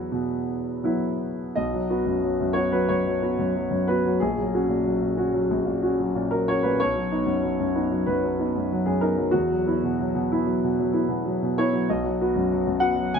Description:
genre	neoclassical minimalist piano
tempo	93 BPM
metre	4/4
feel	rubato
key	B major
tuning	A4 = 439 Hz
part	warm concert grand piano	solo	0.0-13.2 s	A#1 to G#5	-22 LUFS	equal	none
room	light reverb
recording	dark, warm production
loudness	-22 LUFS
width	side -6 dB against mid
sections	0.0-1.6 A section; 1.6-13.2 B section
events	none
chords	0.0 Esus2; 1.6 B; 4.2 F#add9/A#; 6.8 B; 9.3 Esus2; 11.9 B

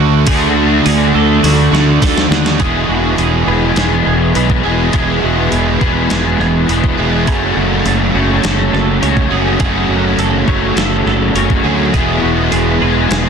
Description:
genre	rock, shoegaze and dream pop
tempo	103 BPM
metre	4/4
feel	straight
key	E mixolydian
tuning	A4 = 440 Hz
part	twelve-string electric guitar	arpeggios	0.0-13.3 s	F#4 to C#5	-21 LUFS	right 13 dB	analog chorus, tape echo
part	crunchy overdriven guitar	riff	0.0-13.3 s	E2 to G#4	-16 LUFS	left 13 dB	ensemble chorus
part	overdriven electric guitar	riff	0.0-13.3 s	D3 to G#4	-17 LUFS	right 14 dB	reverse reverb
part	sludgy distorted guitar	riff	0.0-2.6 s	D3 to D4	-16 LUFS	equal	overdrive
part	fuzz fingered electric bass	bass	0.0-13.3 s	E1 to D#2	-16 LUFS	equal	overdrive
part	gated 80s digital drum machine	drums	0.3-13.2 s	hi-hat, kick drum, snare drum	-17 LUFS	equal	gated reverb, gated reverb snare
room	little or no reverb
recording	dense, heavily limited modern master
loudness	-11 LUFS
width	side -6 dB against mid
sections	0.0-2.6 A section; 2.6-13.3 B section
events	drum fill 1.4-2.6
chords	0.0 D; 2.6 Eadd9; 7.3 F#m; 11.9 Eadd9

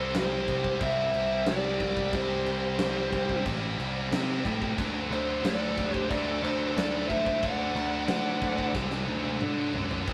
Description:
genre	heavy metal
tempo	91 BPM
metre	4/4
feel	straight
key	unclear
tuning	A4 = 440 Hz
part	bluesy overdriven lead guitar	melody	0.0-8.7 s	C5 to F#5	-33 LUFS	equal	distortion
part	high-gain lead guitar	second line	0.0-8.7 s	G4 to D5	-38 LUFS	equal	distortion
part	scooped high-gain guitar	riff	0.0-10.1 s	E2 to E4	-40 LUFS	equal	distortion
part	scooped high-gain guitar	riff	0.0-10.1 s	E2 to G3	-37 LUFS	equal	distortion
part	growling picked electric bass	bass	0.0-10.1 s	E1 to D3	-35 LUFS	equal	overdrive
part	big rock drum kit	drums	0.1-10.1 s	crash cymbal, kick drum, snare drum, toms	-36 LUFS	equal	none
room	moderate studio ambience, RT60 0.5 s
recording	rough rehearsal-room recording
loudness	-29 LUFS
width	mono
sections	0.0-10.1 A section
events	drum fill 8.8-10.1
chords	0.0 C; 4.8 D

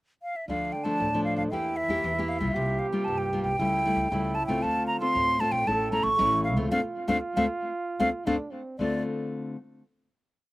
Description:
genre	samba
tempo	116 BPM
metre	4/4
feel	straight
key	D minor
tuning	A4 = 440 Hz
part	hollow silver concert flute	melody	0.2-9.0 s	D5 to C#6	-27 LUFS	equal	slapback echo
part	clear trombone	second line	0.5-9.0 s	A3 to A4	-33 LUFS	right 3 dB	none
part	nylon-string guitar	accompaniment	0.5-9.6 s	G2 to G4	-30 LUFS	left 2 dB	slapback echo
part	upright bass	bass	0.5-9.0 s	A1 to E2	-34 LUFS	equal	none
room	little or no reverb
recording	recorded outdoors, with no room sound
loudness	-25 LUFS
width	side -18 dB against mid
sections	0.0-0.5 pickup bar; 0.5-8.8 A section; 8.8-10.5 final chord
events	band accent 6.7-8.8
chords	0.5 Dm; 1.5 Edim; 2.6 C7sus4; 3.6 A7/C#; 4.6 Dm7; 5.7 A; 6.7 Dm7

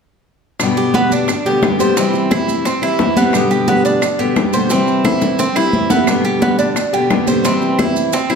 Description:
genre	latin, Cuban son and guajira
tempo	175 BPM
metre	4/4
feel	straight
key	G major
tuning	A4 = 440 Hz
part	picked steel-string acoustic guitar	accompaniment	0.6-8.4 s	G2 to G4	-16 LUFS	left 2 dB	none
part	bongos	percussion	0.6-8.4 s	none	-24 LUFS	left 5 dB	none
part	claves	percussion	0.6-8.4 s	none	-28 LUFS	right 4 dB	none
part	congas	percussion	0.6-8.4 s	none	-20 LUFS	equal	none
part	maracas	percussion	0.6-8.4 s	none	-29 LUFS	right 7 dB	none
part	Cuban tres	arpeggios	0.8-8.4 s	B3 to C5	-18 LUFS	right 4 dB	none
room	wet large studio reverb, RT60 1.2 s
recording	none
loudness	-12 LUFS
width	side -6 dB against mid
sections	0.6-8.4 A section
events	drum fill 4.7-6.1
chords	0.6 G; 2.0 C; 3.3 G; 4.7 C; 6.1 G; 7.4 C

